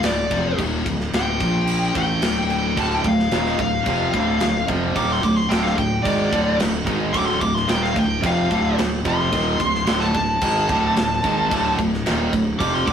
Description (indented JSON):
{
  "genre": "heavy metal",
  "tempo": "110 BPM",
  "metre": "4/4",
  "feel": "straight",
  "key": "D phrygian",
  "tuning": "A4 = 439 Hz",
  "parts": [
    { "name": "high-gain lead guitar", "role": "melody", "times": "0.0-12.9 s", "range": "D5 to D6", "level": "-22 LUFS", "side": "left 2 dB", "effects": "distortion" },
    { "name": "scooped high-gain guitar", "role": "riff", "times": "0.0-12.9 s", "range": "D2 to Bb3", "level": "-27 LUFS", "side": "left 5 dB", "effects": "distortion" },
    { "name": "thick fuzz guitar", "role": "riff", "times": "0.0-12.9 s", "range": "D2 to Bb3", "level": "-29 LUFS", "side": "left 1 dB", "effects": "none" },
    { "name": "fuzz fingered electric bass", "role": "bass", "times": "0.0-12.9 s", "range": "D1 to Bb1", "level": "-26 LUFS", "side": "equal", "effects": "overdrive" },
    { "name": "tight metal drum kit", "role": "drums", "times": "0.0-12.9 s", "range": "crash cymbal, kick drum, snare drum", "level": "-25 LUFS", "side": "equal", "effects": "none" },
    { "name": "distorted electric guitar", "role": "riff", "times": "2.8-12.9 s", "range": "D2 to G#3", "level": "-23 LUFS", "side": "right 5 dB", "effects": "overdrive" }
  ],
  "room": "moderate small room ambience, RT60 0.5 s",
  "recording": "rough rehearsal-room recording, warm saturation",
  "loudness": "-18 LUFS",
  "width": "side -8 dB against mid",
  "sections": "0.0-12.9 A section",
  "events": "lead electric guitar solo 0.0-12.9",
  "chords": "0.0 Dm; 1.4 Bb5; 2.0 Dm"
}